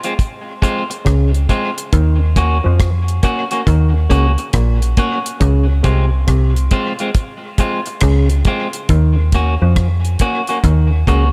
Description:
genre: roots reggae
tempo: 69 BPM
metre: 4/4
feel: swing 64% on 16ths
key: Db major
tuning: A4 = 440 Hz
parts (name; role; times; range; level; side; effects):
- electric guitar at the edge of break-up; accompaniment; 0.0-11.3 s; Ab3 to Gb4; -23 LUFS; equal; spring reverb, tape echo
- deep reggae drum kit; drums; 0.0-11.3 s; hi-hat, kick drum, rim click; -19 LUFS; equal; none
- overdriven clav; riff; 1.0-11.2 s; Bb2 to F3; -22 LUFS; equal; none
- metallic FM bass; bass; 1.1-11.3 s; Bb1 to F2; -16 LUFS; equal; none
room: small room reverb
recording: echo-heavy mix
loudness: -15 LUFS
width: mono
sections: 0.0-11.3 A section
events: none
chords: 0.0 Dbmaj7; 1.9 Ebm7; 5.4 Dbmaj7; 8.9 Ebm7

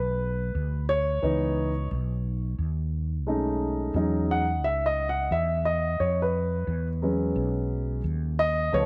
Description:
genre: hip hop, jazz-hop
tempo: 88 BPM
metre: 4/4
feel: swing 61% on 16ths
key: unclear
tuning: A4 = 440 Hz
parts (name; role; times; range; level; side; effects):
- dark grand piano; accompaniment; 0.0-8.9 s; E3 to F#5; -29 LUFS; equal; none
- mellow fretless electric bass; bass; 0.0-8.9 s; B1 to F2; -31 LUFS; equal; analog chorus
room: moderate plate reverb, RT60 2.9 s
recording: none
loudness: -27 LUFS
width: mono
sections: 0.0-8.9 A section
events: grand piano solo 0.0-8.9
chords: 0.0 F#sus4 (rootless); 1.2 C#m9; 3.3 B13; 4.0 Emaj13; 6.7 B69

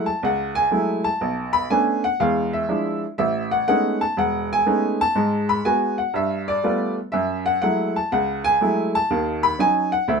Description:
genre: solo jazz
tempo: 122 BPM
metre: 4/4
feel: swing 66% on 8ths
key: unclear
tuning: A4 = 440 Hz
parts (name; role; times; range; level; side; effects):
- bright upright piano; solo; 0.0-10.2 s; E1 to B5; -19 LUFS; equal; none
room: light reverb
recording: minimal, uncompressed stereo recording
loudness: -19 LUFS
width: side -5 dB against mid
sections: 0.0-10.2 A section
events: none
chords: 0.0 F#m9; 1.2 Bm9; 2.2 E7b9; 3.2 Amaj9#11; 5.2 G#m7; 6.1 G9; 7.1 F#m9; 9.1 D#m7b5

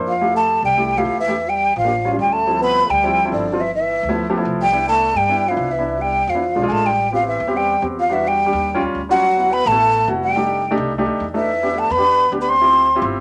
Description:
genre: jazz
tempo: 213 BPM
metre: 4/4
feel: straight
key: C major, A minor from 7.0 s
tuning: A4 = 445 Hz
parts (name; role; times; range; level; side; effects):
- warm grand piano; accompaniment; 0.0-13.2 s; F3 to C5; -24 LUFS; equal; none
- upright bass; bass; 0.0-13.2 s; F1 to G2; -32 LUFS; equal; none
- breathy hollow jazz flute; melody; 0.1-13.0 s; D5 to C6; -19 LUFS; equal; none
- breathy trombone; second line; 0.1-13.0 s; D3 to C4; -27 LUFS; equal; none
room: moderate club reverb, RT60 0.6 s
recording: none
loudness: -18 LUFS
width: mono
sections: 0.0-7.0 A section; 7.0-13.2 B section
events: none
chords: 0.2 Fmaj7; 1.3 Em; 1.9 A7b13; 2.5 Dm11; 3.6 G13; 4.7 Cmaj9; 6.4 E7b9; 7.0 Am9; 8.1 Em7; 8.7 D#9; 9.2 D6; 10.4 F13; 11.5 Em7; 12.6 Dm11

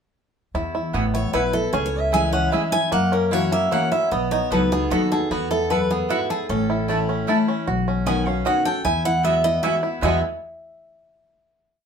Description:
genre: bluegrass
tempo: 152 BPM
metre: 3/4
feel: straight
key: E major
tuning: A4 = 438 Hz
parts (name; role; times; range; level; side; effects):
- picked steel-string acoustic guitar; accompaniment; 0.5-10.2 s; E2 to F#4; -25 LUFS; left 3 dB; none
- bluegrass banjo; arpeggios; 0.5-10.2 s; G#3 to A4; -26 LUFS; right 2 dB; none
- upright bass; bass; 0.5-10.2 s; A1 to F#2; -26 LUFS; equal; none
- mandolin; stabs; 0.9-10.2 s; A3 to B5; -27 LUFS; right 4 dB; none
- picked steel-string acoustic guitar; melody; 1.1-10.2 s; F#4 to G#5; -23 LUFS; right 1 dB; none
room: wet studio reverb, RT60 0.5 s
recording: band playing live in one room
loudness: -19 LUFS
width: side -6 dB against mid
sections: 0.5-10.0 A section; 10.0-11.2 final chord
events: none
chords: 0.5 Eadd9; 1.7 C#m; 2.9 F#7; 4.1 B; 5.3 Esus2; 6.5 A; 7.7 Badd9; 8.9 Eadd9

